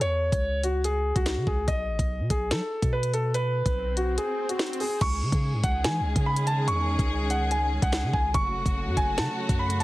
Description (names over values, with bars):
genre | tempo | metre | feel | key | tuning
hip hop, drill | 144 BPM | 4/4 | half-time | C# minor | A4 = 441 Hz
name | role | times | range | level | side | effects
dark baby grand piano | melody | 0.0-9.8 s | F#4 to C#6 | -28 LUFS | equal | none
long sustained 808-style bass | bass | 0.0-9.8 s | E1 to F#3 | -28 LUFS | equal | none
drill drum kit | drums | 0.0-9.8 s | crash cymbal, hi-hat, kick drum, snare drum | -28 LUFS | equal | vintage 12-bit sampler grit
swell | sound effects | 3.7-5.0 s | none | -37 LUFS | equal | none
dark studio string section | sustained chords | 5.0-9.8 s | C#3 to G#4 | -32 LUFS | left 1 dB | none
room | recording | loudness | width
light reverb, digital ambience | heavily compressed radio sound, multiband compression | -24 LUFS | side -17 dB against mid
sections
0.0-5.0 A section; 5.0-9.8 B section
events
swell 3.7-5.0; kick muted 4.2-5.0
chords
0.0 C#5; 1.7 N.C.; 5.0 C#sus2; 8.3 F#m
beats
| 0.01 0.43 0.84 1.26 | 1.68 2.09 2.51 2.93 | 3.34 3.76 4.18 4.59 | 5.01 5.43 5.84 6.26 | 6.68 7.09 7.51 7.93 | 8.34 8.76 9.18 9.59